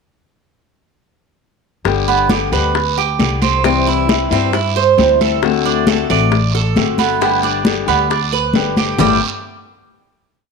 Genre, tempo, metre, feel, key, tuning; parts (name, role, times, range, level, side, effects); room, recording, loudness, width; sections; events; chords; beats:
latin, Cuban son and guajira; 134 BPM; 4/4; straight; G major; A4 = 441 Hz
flamenco guitar; accompaniment; 1.8-9.2 s; G2 to G4; -19 LUFS; left 12 dB
upright bass; bass; 1.9-9.2 s; G1 to G2; -20 LUFS; left 1 dB
bongos; percussion; 1.9-9.1 s; -23 LUFS; left 12 dB
congas; percussion; 1.9-9.1 s; -19 LUFS; left 1 dB
guiro; percussion; 1.9-9.1 s; -25 LUFS; right 13 dB
Cuban tres; arpeggios; 2.1-9.2 s; G3 to D5; -16 LUFS; right 8 dB
moderate echo chamber reverb, RT60 1.3 s, small room ambience; 1960s-style stereo with parts hard left and right; -12 LUFS; side -4 dB against mid
1.9-9.0 A section; 9.0-10.5 final chord
1.9 G; 3.6 C; 5.4 D7; 7.2 G; 9.0 G5
| 1.85 2.30 2.75 3.19 | 3.64 4.08 4.53 4.98 | 5.42 5.87 6.31 6.76 | 7.21 7.65 8.10 8.54 | 8.99